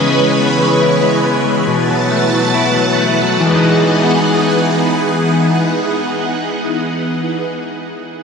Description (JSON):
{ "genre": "dream pop", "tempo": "66-73 BPM", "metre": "4/4", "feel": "straight", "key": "E major", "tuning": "A4 = 440 Hz", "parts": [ { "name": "phased string machine", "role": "sustained chords", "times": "0.0-7.4 s", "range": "E3 to A5", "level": "-14 LUFS", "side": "equal", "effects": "ensemble chorus, phaser" }, { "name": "electric guitar at the edge of break-up", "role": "arpeggios", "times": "0.0-7.6 s", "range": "B2 to E4", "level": "-16 LUFS", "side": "left 2 dB", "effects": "lush chorus, diffuse ambient delay" } ], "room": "wet huge ambient reverb, RT60 8.4 s", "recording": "dreamy mix soaked in reverb", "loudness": "-12 LUFS", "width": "side -5 dB against mid", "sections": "0.0-3.4 A section; 3.4-7.1 B section", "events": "slowing down 0.0-3.4", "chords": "0.0 C#m7; 1.7 B7sus4; 3.4 Emaj7" }